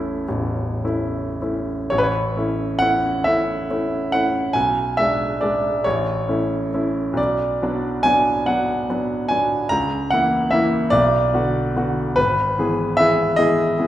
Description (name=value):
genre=classical, romantic nocturne for solo piano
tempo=35-50 BPM (dotted quarters)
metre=6/8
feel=rubato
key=A major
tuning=A4 = 441 Hz
part: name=warm baby grand piano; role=solo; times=0.0-13.9 s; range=A0 to A#5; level=-18 LUFS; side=equal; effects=none
room=wet recital hall reverb, RT60 1.5 s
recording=recorded in a church or concert hall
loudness=-18 LUFS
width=side -13 dB against mid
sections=0.0-1.9 A section; 1.9-13.9 B section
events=none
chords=0.0 A; 4.6 G#dim/B; 5.8 A; 7.2 Bm; 9.7 A#dim/C#; 10.9 Bm; 12.2 E/G#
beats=0.28 | 1.93 3.26 | 4.55 5.85 | 7.18 8.46 | 9.70 10.92 | 12.18 13.39